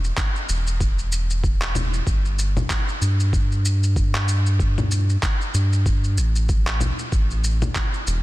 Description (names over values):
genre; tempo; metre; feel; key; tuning
organic downtempo; 95 BPM; 4/4; swing 57% on 16ths; unclear; A4 = 439 Hz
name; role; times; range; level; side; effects
round analog bass; bass; 0.0-8.2 s; E1 to G2; -20 LUFS; equal; sidechain pumping
electronic shaker, handclaps and congas; drums; 0.0-8.2 s; none; -26 LUFS; left 1 dB; soft clipping on snare
electronic kick drum; drums; 0.2-7.9 s; none; -22 LUFS; equal; none
room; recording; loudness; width
little or no reverb; dense, heavily limited modern master; -19 LUFS; side -18 dB against mid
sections
0.0-8.2 A section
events
none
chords
none